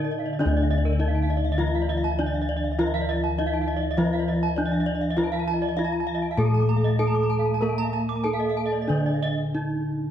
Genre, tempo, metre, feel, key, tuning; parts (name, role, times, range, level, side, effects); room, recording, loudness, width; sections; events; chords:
Balinese gamelan; 100 BPM; 4/4; uneven beats; D pelog; A4 = 442 Hz
gamelan-type bronze metallophone; melody; 0.0-10.1 s; D4 to Bb4-40c; -28 LUFS; right 1 dB
gamelan-type bronze metallophone; accompaniment; 0.0-10.1 s; D3 to Bb3-40c; -32 LUFS; right 1 dB
gamelan-type bronze metallophone; arpeggios; 0.0-9.2 s; D5 to D6; -32 LUFS; left 3 dB
gamelan-type bronze metallophone; arpeggios; 0.0-9.3 s; Bb4-40c to D6; -32 LUFS; right 5 dB
gamelan-type bossed gongs; bass; 0.0-10.1 s; D2 to Bb4-40c; -25 LUFS; left 1 dB
moderate recital hall reverb, RT60 1.6 s; dark, warm production; -22 LUFS; side -10 dB against mid
0.4-10.1 A section
break 9.2-10.1